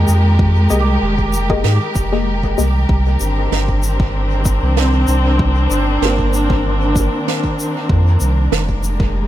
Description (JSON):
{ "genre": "ambient dub", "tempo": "96 BPM", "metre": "4/4", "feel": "swing 54% on 16ths", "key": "C minor", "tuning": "A4 = 440 Hz", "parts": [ { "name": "warm studio string section", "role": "sustained chords", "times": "0.0-9.3 s", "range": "Eb3 to Bb4", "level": "-19 LUFS", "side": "left 1 dB", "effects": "none" }, { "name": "felt-muted upright piano", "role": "arpeggios", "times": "0.0-8.0 s", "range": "Bb3 to D6", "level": "-27 LUFS", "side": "right 3 dB", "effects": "dub echo" }, { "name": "warm sub bass", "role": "bass", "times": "0.0-9.3 s", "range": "F1 to Ab2", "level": "-15 LUFS", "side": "equal", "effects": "tube saturation" }, { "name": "shaker and snare drum", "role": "drums", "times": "0.1-9.0 s", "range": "none", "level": "-24 LUFS", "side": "right 6 dB", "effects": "dub echo" }, { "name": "electronic kick drum", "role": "drums", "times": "0.4-9.1 s", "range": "none", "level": "-19 LUFS", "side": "equal", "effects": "overdrive" }, { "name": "filtered dub chord stab", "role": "stabs", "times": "0.7-2.8 s", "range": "Bb3 to Eb5", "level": "-25 LUFS", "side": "left 4 dB", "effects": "chorus, dub echo" } ], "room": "small room ambience", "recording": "none", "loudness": "-13 LUFS", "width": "side -13 dB against mid", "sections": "0.0-2.9 A section; 2.9-9.3 B section", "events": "none", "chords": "0.0 Fm11; 2.9 Cm9; 7.9 Fm11" }